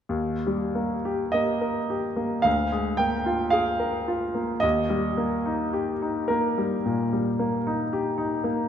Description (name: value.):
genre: classical, romantic nocturne for solo piano.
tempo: 50-59 BPM.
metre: 4/4.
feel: rubato.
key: Eb major.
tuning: A4 = 441 Hz.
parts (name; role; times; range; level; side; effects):
clear grand piano; solo; 0.1-8.7 s; D2 to G5; -23 LUFS; equal; none.
room: wet recital hall reverb, RT60 1.8 s.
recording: none.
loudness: -23 LUFS.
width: side -8 dB against mid.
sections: 0.2-8.7 A section.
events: none.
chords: 0.2 Eb; 2.5 Bb7/D; 4.6 Eb.